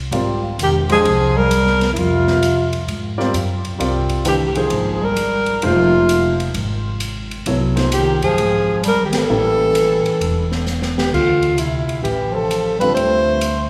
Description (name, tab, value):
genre	modal jazz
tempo	131 BPM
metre	4/4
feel	swing 66% on 8ths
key	unclear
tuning	A4 = 440 Hz
part	upright bass	bass	0.0-13.7 s	E1 to Ab2	-24 LUFS	equal	none
part	warm concert grand piano	accompaniment	0.1-13.4 s	D3 to Eb5	-26 LUFS	equal	none
part	open jazz drum kit	drums	0.1-13.6 s	crash cymbal, hi-hat, kick drum, ride cymbal, snare drum	-29 LUFS	equal	none
part	breathy alto saxophone	melody	0.6-13.7 s	E4 to C5	-20 LUFS	equal	none
part	mellow bass clarinet	second line	0.6-13.7 s	C3 to A3	-24 LUFS	equal	none
room	wet church reverb, RT60 2.5 s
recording	recorded in a church or concert hall, small room ambience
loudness	-17 LUFS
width	mono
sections	0.0-11.1 A section; 11.1-13.7 B section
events	band accent 9.1; drum fill 10.7-11.1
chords	0.0 Fm11; 9.3 A7b9; 11.1 Dm9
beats	| 0.12 0.58 1.04 1.50 | 1.95 2.41 2.87 3.33 | 3.79 4.25 4.71 5.16 | 5.62 6.08 6.54 7.00 | 7.46 7.91 8.37 8.83 | 9.29 9.75 10.21 10.66 | 11.12 11.58 12.04 12.50 | 12.96 13.42